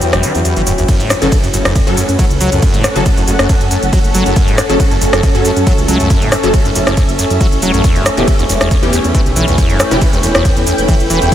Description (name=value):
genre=driving peak-time techno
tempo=138 BPM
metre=4/4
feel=straight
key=F# phrygian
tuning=A4 = 440 Hz
part: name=acid bass, saw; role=riff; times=0.0-11.3 s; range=E2 to F#3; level=-18 LUFS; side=equal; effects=analog chorus, cassette tape, sidechain pumping, diffuse ambient delay
part: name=analog drone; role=drone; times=0.0-11.3 s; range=F#3 to C#4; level=-21 LUFS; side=left 2 dB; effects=chorus, sidechain pumping
part: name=techno drum kit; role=drums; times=0.0-11.3 s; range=hi-hat, ride cymbal, rim click, shaker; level=-18 LUFS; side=equal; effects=overdrive, sidechain pumping on hats, sidechain pumping on perc, sidechain pumping on cymbals
part: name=granular cloud pad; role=texture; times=0.0-11.3 s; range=C#4 to G5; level=-19 LUFS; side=right 1 dB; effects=built-in reverb, ensemble chorus, sidechain pumping
part: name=dark detuned saw bass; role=bass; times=0.1-11.3 s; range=D1 to F#2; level=-18 LUFS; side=equal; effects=sidechain pumping
part: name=electronic kick drum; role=drums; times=0.9-11.3 s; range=none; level=-13 LUFS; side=equal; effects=none
part: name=rave stab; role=stabs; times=1.2-10.0 s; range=E3 to A4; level=-20 LUFS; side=left 1 dB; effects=chorus, built-in reverb, sidechain pumping, diffuse ambient delay
room=light reverb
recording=none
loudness=-10 LUFS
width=side -11 dB against mid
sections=0.0-11.3 A section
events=break 0.0-0.9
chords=0.0 Em; 0.9 F#m; 7.8 Em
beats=0.01 0.45 | 0.89 1.32 1.75 2.19 | 2.62 3.06 3.49 3.93 | 4.36 4.80 5.23 5.67 | 6.10 6.54 6.97 7.41 | 7.84 8.28 8.71 9.15 | 9.58 10.02 10.45 10.88 | 11.32